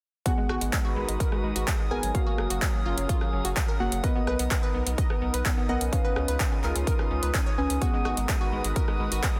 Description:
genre	progressive house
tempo	127 BPM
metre	4/4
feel	straight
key	G# dorian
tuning	A4 = 440 Hz
part	supersaw pad	sustained chords	0.7-9.4 s	C#3 to E#5	-38 LUFS	equal	phaser, sidechain pumping, low-pass filter
part	glassy wavetable pluck	arpeggios	0.3-9.4 s	F#3 to D#5	-36 LUFS	equal	chorus, sidechain pumping, delay
part	deep mellow chord stab	stabs	0.3-9.4 s	A#3 to G#5	-35 LUFS	equal	chorus, sidechain pumping, delay
part	big-room dance drum kit	drums	0.3-9.3 s	handclaps, hi-hat, rim click	-35 LUFS	equal	none
part	electronic kick drum	drums	0.3-9.3 s	none	-29 LUFS	equal	none
part	drifting glass-harmonics texture	texture	0.7-9.4 s	D#6	-42 LUFS	equal	chorus, built-in reverb, sidechain pumping
part	saturated sub bass	bass	0.5-9.2 s	F#1 to C#2	-32 LUFS	equal	sidechain pumping
room	light reverb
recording	dense, heavily limited modern master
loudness	-26 LUFS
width	mono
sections	0.3-9.4 A section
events	none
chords	0.3 G#m7; 2.1 F#maj7; 4.0 Bmaj7; 5.9 C#7; 7.8 G#m7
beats	| 0.26 0.73 1.20 1.68 | 2.15 2.62 3.09 3.56 | 4.04 4.51 4.98 5.45 | 5.93 6.40 6.87 7.34 | 7.82 8.29 8.76 9.23

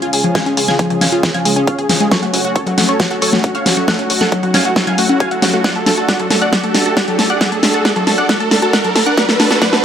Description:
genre	uplifting trance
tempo	136 BPM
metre	4/4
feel	straight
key	F# harmonic minor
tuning	A4 = 440 Hz
part	dense compressed supersaw	melody	0.0-9.8 s	F#4 to G#5	-19 LUFS	right 1 dB	sidechain pumping, low-pass filter, digital delay
part	wide unison pluck	second line	0.0-9.8 s	F#5 to G#6	-24 LUFS	equal	sidechain pumping, digital delay
part	lush unison pad	sustained chords	0.0-9.8 s	C#3 to G#4	-22 LUFS	right 2 dB	chorus, sidechain pumping
part	wide unison pluck	arpeggios	0.0-9.8 s	E#3 to A4	-19 LUFS	left 2 dB	sidechain pumping, digital delay
part	big-room dance drum kit	drums	0.0-9.8 s	hi-hat, snare drum	-16 LUFS	equal	sidechain pumping on hats
part	riser	sound effects	2.3-9.8 s	none	-23 LUFS	right 2 dB	none
part	plucky analog bass	bass	0.1-9.8 s	F#1 to F#2	-28 LUFS	equal	none
part	electronic kick drum	drums	0.4-9.7 s	none	-20 LUFS	equal	high-pass filter on kick
room	light reverb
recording	high-pass filter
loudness	-12 LUFS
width	side -8 dB against mid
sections	0.0-9.8 A section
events	build-up 0.0-9.8; drum fill 0.0-9.8; filter sweep on supersaw synth 0.0-9.8; riser 2.3-9.8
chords	0.0 C#; 2.1 F#m; 5.6 D/F#; 9.2 Bm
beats	| 0.35 0.79 1.23 1.68 | 2.12 2.56 3.00 3.44 | 3.88 4.32 4.76 5.20 | 5.64 6.09 6.53 6.97 | 7.41 7.85 8.29 8.73 | 9.18 9.62

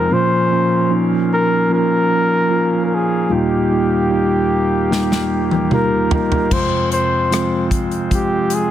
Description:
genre	pop ballad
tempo	75 BPM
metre	4/4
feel	straight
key	unclear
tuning	A4 = 440 Hz
part	warm flugelhorn	melody	0.0-8.7 s	G4 to C5	-19 LUFS	left 1 dB	none
part	mellow tine electric piano	accompaniment	0.0-8.7 s	Eb2 to G5	-17 LUFS	right 1 dB	medium stereo tremolo
part	chamber organ, soft reed	sustained chords	0.0-8.7 s	Eb2 to F5	-26 LUFS	left 1 dB	none
part	modern studio drum kit	drums	4.9-8.7 s	crash cymbal, hi-hat, kick drum, rim click, snare drum, toms	-21 LUFS	left 1 dB	none
room	light reverb, small room ambience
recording	none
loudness	-14 LUFS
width	side -11 dB against mid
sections	0.0-6.5 A section; 6.5-8.7 B section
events	tine electric piano fill 4.9-6.5; drum fill 4.9-6.5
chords	0.1 Bbm; 3.3 Ebadd9; 6.5 Fm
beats	| 0.11 0.91 1.71 2.51 | 3.31 4.11 4.91 5.71 | 6.51 7.31 8.11

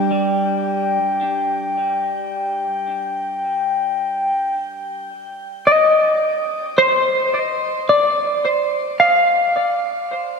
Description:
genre	ambient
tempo	54 BPM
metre	4/4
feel	straight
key	C minor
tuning	A4 = 440 Hz
part	clean electric guitar	arpeggios	0.0-10.4 s	G3 to F5	-16 LUFS	equal	wide subtle chorus, tape echo, shimmer reverb
part	glass harmonica	texture	0.0-4.5 s	G5	-21 LUFS	left 3 dB	shimmer reverb
room	wet lush hall reverb, RT60 3.0 s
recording	dreamy mix soaked in reverb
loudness	-16 LUFS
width	side -5 dB against mid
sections	0.0-4.5 A section; 4.5-10.4 B section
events	none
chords	0.0 N.C.; 4.5 Cmadd9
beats	| 0.10 1.21 2.32 3.43 | 4.54 5.65 6.76 7.88 | 8.99 10.10

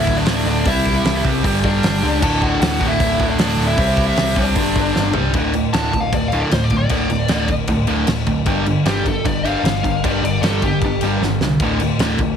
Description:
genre	punk rock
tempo	153 BPM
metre	4/4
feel	straight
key	unclear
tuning	A4 = 444 Hz
part	smooth overdriven lead guitar	melody	0.0-11.0 s	D4 to A5	-23 LUFS	left 1 dB	tape echo
part	overdriven electric guitar	riff	0.0-12.4 s	D2 to C4	-19 LUFS	equal	none
part	overdriven picked electric bass	bass	0.0-12.3 s	D1 to C#2	-23 LUFS	equal	none
part	loose indie drum kit	drums	0.1-12.3 s	crash cymbal, hi-hat, kick drum, snare drum, toms	-21 LUFS	equal	none
room	light reverb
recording	heavily compressed radio sound, multiband compression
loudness	-15 LUFS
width	side -8 dB against mid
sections	0.0-5.3 A section; 5.3-12.4 B section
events	drum fill 5.0-5.3, 11.2-11.6; lead electric guitar solo 5.3-12.4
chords	0.0 D5; 0.7 C; 1.4 G5; 2.2 D; 3.8 C; 4.6 G5; 5.3 D5; 8.5 G5; 11.6 D5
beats	0.27 | 0.66 1.05 1.44 1.83 | 2.22 2.61 3.00 3.39 | 3.78 4.17 4.57 4.96 | 5.35 5.74 6.13 6.52 | 6.91 7.30 7.70 8.09 | 8.48 8.87 9.26 9.65 | 10.04 10.44 10.83 11.22 | 11.61 12.00

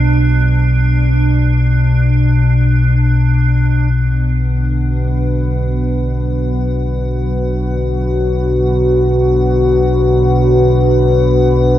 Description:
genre	dark ambient drone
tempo	free time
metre	none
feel	none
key	B minor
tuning	A4 = 445 Hz
part	deep rumbling drone	drone	0.0-11.8 s	B1 to B2	-13 LUFS	equal	built-in reverb
part	icy glass pad	texture	0.0-11.8 s	D4 to F#5	-24 LUFS	right 3 dB	chorus, built-in reverb
part	dark analog pad	sustained chords	3.9-11.8 s	B3 to B4	-15 LUFS	left 1 dB	chorus
room	moderate huge ambient reverb, RT60 7.8 s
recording	none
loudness	-11 LUFS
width	side -12 dB against mid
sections	0.0-3.9 A section; 3.9-11.8 B section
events	fade-in on ambient pad 3.9-11.8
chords	0.0 Bm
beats	free time

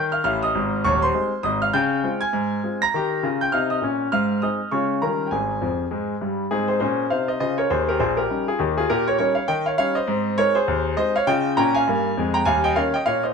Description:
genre	jazz, stride piano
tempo	201 BPM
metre	4/4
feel	swing 61% on 8ths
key	Ab major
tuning	A4 = 439 Hz
part	clear concert grand piano	solo	0.0-13.3 s	Eb1 to Bb6	-19 LUFS	equal	none
room	moderate studio reverb, RT60 0.6 s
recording	nothing above 10.3 kHz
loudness	-19 LUFS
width	side -5 dB against mid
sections	0.0-6.5 A section; 6.5-13.3 A section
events	grand piano fill 5.6-6.5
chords	0.0 Eb; 0.5 Ab; 1.7 Dbmaj7; 2.9 Eb7; 4.1 Ab; 4.7 Db; 5.0 Eb9; 5.3 Fmadd9/Ab; 6.5 Ab; 7.7 Eb7; 8.9 Eb7/Bb; 10.1 Ab; 11.3 Db; 12.5 Eb7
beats	0.25 | 0.55 0.84 1.14 1.44 | 1.74 2.04 2.34 2.63 | 2.93 3.23 3.53 3.83 | 4.13 4.42 4.72 5.02 | 5.32 5.62 5.92 6.21 | 6.51 6.81 7.11 7.40 | 7.70 8.00 8.30 8.60 | 8.89 9.19 9.49 9.79 | 10.08 10.38 10.68 10.98 | 11.27 11.57 11.87 12.17 | 12.46 12.76 13.06

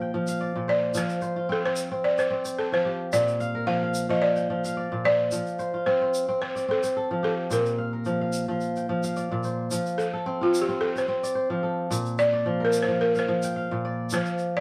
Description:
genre	west african traditional, West African string and xylophone music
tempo	110 BPM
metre	4/4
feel	swing 54% on 16ths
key	F major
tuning	A4 = 440 Hz
part	kora	arpeggios	0.0-14.6 s	Bb2 to G5	-29 LUFS	equal	none
part	tube shaker	percussion	0.3-14.5 s	none	-41 LUFS	equal	none
part	balafon	melody	0.7-14.6 s	F4 to F5	-28 LUFS	equal	none
room	light reverb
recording	band playing live in one room, faint mains hum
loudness	-26 LUFS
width	mono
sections	0.0-9.7 A section; 9.7-14.6 B section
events	balafon solo 9.7-14.6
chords	0.0 Bb; 1.0 F; 3.1 Bb; 5.3 F; 7.5 Bb; 9.7 F; 11.9 Bb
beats	0.41 | 0.95 1.50 2.04 2.59 | 3.14 3.68 4.23 4.77 | 5.32 5.87 6.42 6.96 | 7.51 8.06 8.61 9.16 | 9.71 10.26 10.81 11.36 | 11.91 12.46 13.01 13.56 | 14.11

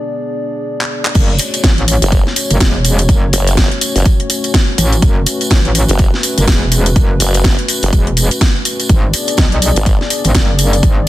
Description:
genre	bass house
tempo	124 BPM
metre	4/4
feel	swing 59% on 16ths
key	F# minor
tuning	A4 = 440 Hz
part	dark analog pad	sustained chords	0.0-11.1 s	A3 to D5	-21 LUFS	left 2 dB	chorus, sidechain pumping
part	garage drum kit	drums	0.8-10.9 s	crash cymbal, handclaps, hi-hat, snare drum	-17 LUFS	equal	small room ambience
part	tambourine	percussion	1.1-10.9 s	none	-22 LUFS	right 2 dB	none
part	metallic wobble bass	bass	1.2-11.1 s	E1 to B1	-14 LUFS	equal	chorus, overdrive, sidechain pumping
part	electronic kick drum	drums	1.2-10.9 s	none	-12 LUFS	equal	small room ambience
part	formant-sweep wobble bass	bass	2.0-10.0 s	F#1 to G#1	-14 LUFS	equal	chorus, sidechain pumping
room	little or no reverb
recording	dense, heavily limited modern master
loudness	-10 LUFS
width	side -15 dB against mid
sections	0.0-1.2 A section; 1.2-11.1 B section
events	break 0.0-1.2; filter sweep on analog synth pad 0.0-1.2; drum fill 0.8-1.2; drop 1.2-11.1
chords	0.0 G#dim; 1.2 F#m; 8.9 G#dim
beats	0.18 0.67 | 1.15 1.64 2.12 2.60 | 3.09 3.57 4.06 4.54 | 5.02 5.51 5.99 6.47 | 6.96 7.44 7.93 8.41 | 8.89 9.38 9.86 10.35 | 10.83

